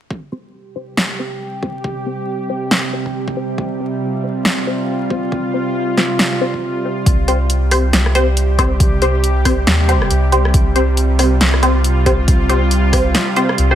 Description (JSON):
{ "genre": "deep dubstep", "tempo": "138 BPM", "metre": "4/4", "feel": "swing 59% on 16ths, half-time", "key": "unclear", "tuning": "A4 = 440 Hz", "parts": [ { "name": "bowed-like drone", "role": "sustained chords", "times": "1.0-13.8 s", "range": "C3 to G4", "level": "-20 LUFS", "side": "right 1 dB", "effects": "built-in reverb" }, { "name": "electronic kick drum", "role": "drums", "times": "0.1-13.0 s", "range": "none", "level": "-17 LUFS", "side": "equal", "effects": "high-pass filter on kick, high-pass filter on room" }, { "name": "filtered dub chord stab", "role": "stabs", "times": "0.3-13.8 s", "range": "C4 to C5", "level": "-19 LUFS", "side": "left 1 dB", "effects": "phaser, wide subtle chorus, dub echo" }, { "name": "deep house drum kit", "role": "drums", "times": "1.0-13.8 s", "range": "hi-hat, rim click, snare drum", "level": "-18 LUFS", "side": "equal", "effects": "none" }, { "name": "soft dub sub bass", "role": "bass", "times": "7.1-13.8 s", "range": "C2 to Eb2", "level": "-15 LUFS", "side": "equal", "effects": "none" } ], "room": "light reverb", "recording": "vinyl crackle", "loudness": "-14 LUFS", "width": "side -10 dB against mid", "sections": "0.1-7.1 A section; 7.1-13.8 B section", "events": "filter sweep on synth drone 0.1-7.1; break 6.6-7.1", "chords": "0.1 C5" }